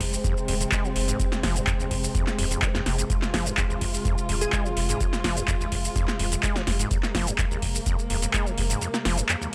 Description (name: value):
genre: acid house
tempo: 126 BPM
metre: 4/4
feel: straight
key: F minor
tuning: A4 = 440 Hz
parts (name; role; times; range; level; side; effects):
- dark chamber string section; sustained chords; 0.0-9.5 s; C3 to F4; -34 LUFS; equal; vintage 12-bit sampler grit, sidechain pumping
- acid bass, saw; riff; 0.0-9.5 s; Eb2 to Ab3; -34 LUFS; equal; overdrive, tape echo
- warm sub bass; bass; 0.0-9.2 s; Eb1 to F1; -31 LUFS; equal; sidechain pumping
- electro analog drum machine; drums; 0.0-9.5 s; handclaps, hi-hat, shaker, snare drum; -30 LUFS; equal; none
- electronic kick drum; drums; 0.0-8.4 s; none; -30 LUFS; equal; none
- glassy wavetable pluck; melody; 4.4-4.6 s; Ab4; -35 LUFS; equal; chorus, tape echo
room: little or no reverb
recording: dry, gritty hardware recording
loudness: -25 LUFS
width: mono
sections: 0.0-9.5 A section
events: kick drops out 8.8-9.5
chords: 0.0 Fm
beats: 0.24 0.72 | 1.20 1.67 2.15 2.62 | 3.10 3.58 4.05 4.53 | 5.00 5.48 5.96 6.43 | 6.91 7.39 7.86 8.34 | 8.81 9.29